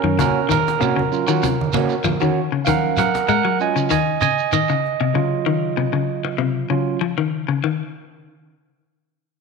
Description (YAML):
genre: afrobeat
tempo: 97 BPM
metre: 4/4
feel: straight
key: Eb dorian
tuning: A4 = 440 Hz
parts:
  - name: barky tine electric piano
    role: accompaniment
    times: 0.0-7.6 s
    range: Db3 to Ab5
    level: -21 LUFS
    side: right 10 dB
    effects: overdrive
  - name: clean electric guitar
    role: arpeggios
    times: 0.0-7.8 s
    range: C3 to Ab3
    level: -21 LUFS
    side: left 10 dB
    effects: none
  - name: electric guitar through a small old amp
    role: stabs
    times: 0.2-2.4 s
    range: Bb3 to Gb4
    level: -24 LUFS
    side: right 7 dB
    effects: none
  - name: cajon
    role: drums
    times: 0.2-4.9 s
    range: none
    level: -31 LUFS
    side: left 4 dB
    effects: none
  - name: congas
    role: percussion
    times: 0.2-2.4 s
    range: none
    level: -28 LUFS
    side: right 7 dB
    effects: none
  - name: shekere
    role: percussion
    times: 0.2-4.8 s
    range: none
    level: -28 LUFS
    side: right 5 dB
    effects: none
room: moderate echo chamber reverb, RT60 1.6 s, studio ambience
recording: 1960s-style stereo with parts hard left and right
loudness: -17 LUFS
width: side -4 dB against mid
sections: 0.0-7.6 A section; 7.6-9.4 B section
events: tine electric piano solo 0.0-7.6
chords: 0.0 Ebm7; 7.6 N.C.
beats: | 0.19 0.81 1.43 2.05 | 2.67 3.29 3.91 4.53 | 5.15 5.77 6.39 7.01 | 7.63